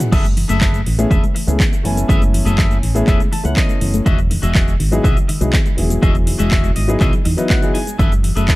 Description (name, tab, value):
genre	nu-disco, nu disco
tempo	122 BPM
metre	4/4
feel	straight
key	F# dorian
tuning	A4 = 441 Hz
part	dark baby grand piano	accompaniment	0.0-7.8 s	F#3 to G#5	-22 LUFS	left 1 dB	tape echo
part	clean electric guitar	riff	0.0-8.6 s	F#4 to A5	-26 LUFS	left 2 dB	wide subtle chorus, tape echo
part	house drum kit	drums	0.0-8.6 s	crash cymbal, handclaps, hi-hat, shaker, toms	-24 LUFS	equal	overdrive
part	soft round pluck	arpeggios	0.1-8.6 s	D#3 to E4	-25 LUFS	left 3 dB	chorus, sidechain pumping, analog delay
part	fingered electric bass	bass	0.1-8.6 s	E1 to E2	-18 LUFS	equal	sidechain pumping
part	electronic kick drum	drums	0.1-8.6 s	none	-16 LUFS	equal	overdrive
room	little or no reverb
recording	dark, warm production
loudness	-13 LUFS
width	side -19 dB against mid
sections	0.0-8.6 A section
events	clean electric guitar fill 3.1-4.1, 6.5-8.0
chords	0.1 F#m11; 4.1 Emaj9; 8.0 F#m11